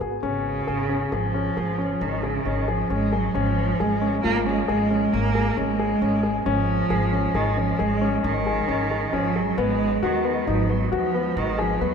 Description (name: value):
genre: contemporary instrumental, chamber music in an uneven meter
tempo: 135 BPM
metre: 7/4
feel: straight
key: unclear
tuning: A4 = 441 Hz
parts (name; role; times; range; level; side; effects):
- dark baby grand piano; arpeggios; 0.0-11.9 s; B3 to G#4; -25 LUFS; left 4 dB; none
- upright bass; bass; 0.0-11.9 s; G#1 to D#2; -28 LUFS; equal; none
- warm cello; second line; 0.2-11.9 s; C#3 to A#3; -24 LUFS; right 3 dB; none
room: wet cathedral reverb, RT60 6.3 s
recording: in a vast, echoing space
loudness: -21 LUFS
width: side -6 dB against mid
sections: 0.0-11.9 A section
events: none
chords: 0.2 C#/G#; 9.6 G#m7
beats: | 0.23 0.68 1.12 1.57 2.01 2.46 2.90 | 3.35 3.79 4.24 4.68 5.13 5.57 6.01 | 6.46 6.91 7.35 7.80 8.24 8.69 9.13 | 9.58 10.03 10.47 10.92 11.37 11.81